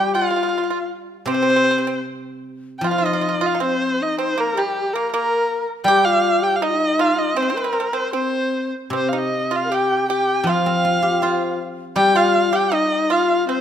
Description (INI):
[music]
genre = chinese traditional, Chinese chamber ensemble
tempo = 79 BPM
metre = 2/4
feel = rubato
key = C yu mode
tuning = A4 = 440 Hz
[part]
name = warm erhu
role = melody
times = 0.0-13.6 s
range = G4 to G5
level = -20 LUFS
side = right 1 dB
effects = none
[part]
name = bright reedy low xiao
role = second line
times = 0.0-13.6 s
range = C4 to Bb4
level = -23 LUFS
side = left 6 dB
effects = none
[part]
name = pipa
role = second line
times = 0.0-13.6 s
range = G3 to G4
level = -25 LUFS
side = right 7 dB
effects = none
[part]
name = guzheng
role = accompaniment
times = 0.0-13.6 s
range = C3 to C5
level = -26 LUFS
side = left 2 dB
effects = none
[sound]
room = moderate recital hall reverb, RT60 1.6 s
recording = none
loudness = -17 LUFS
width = side -9 dB against mid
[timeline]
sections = 0.0-2.8 A section; 2.8-13.6 B section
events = none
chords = none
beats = 0.51 | 1.26 2.04 | 2.83 3.60 | 4.37 5.12 | 5.87 6.62 | 7.37 8.13 | 8.93 9.71 | 10.47 11.22 | 11.97 12.72 | 13.48